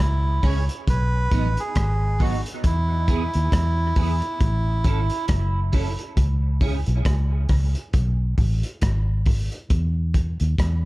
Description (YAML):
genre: dub reggae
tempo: 68 BPM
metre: 4/4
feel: swing 58% on 16ths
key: unclear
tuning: A4 = 440 Hz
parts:
  - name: melodica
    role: melody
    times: 0.0-5.3 s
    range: E4 to C#5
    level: -28 LUFS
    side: right 2 dB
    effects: dub echo
  - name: vintage muted fingered electric bass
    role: bass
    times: 0.0-10.9 s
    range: F#1 to E2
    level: -21 LUFS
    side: equal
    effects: none
  - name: crunchy breakbeat drum kit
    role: drums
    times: 0.0-10.8 s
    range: hi-hat, kick drum, rim click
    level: -23 LUFS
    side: equal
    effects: none
  - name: clean electric guitar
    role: accompaniment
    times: 0.4-6.8 s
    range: F#3 to A4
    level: -33 LUFS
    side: right 5 dB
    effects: ensemble chorus, dub echo
room: small room ambience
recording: dark, warm production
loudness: -20 LUFS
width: side -20 dB against mid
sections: 0.0-10.9 A section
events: none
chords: 0.0 C#m; 0.9 B; 2.6 E; 4.4 A; 6.2 N.C.; 7.9 G#m; 9.7 N.C.